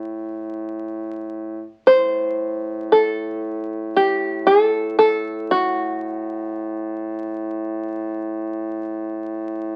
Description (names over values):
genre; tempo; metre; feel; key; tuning
caucasian folk, Caucasian lament; 53-61 BPM; 4/4; rubato; A dorian; A4 = 438 Hz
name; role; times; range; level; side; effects
open-back banjo; melody; 0.0-7.0 s; F#4 to C5; -19 LUFS; equal; none
mellow duduk; drone; 0.0-9.8 s; A2; -29 LUFS; equal; none
room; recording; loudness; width
moderate studio reverb, RT60 0.7 s; very old 78 rpm record, vinyl crackle; -22 LUFS; mono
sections
0.0-1.8 A section; 1.8-9.8 B section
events
none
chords
none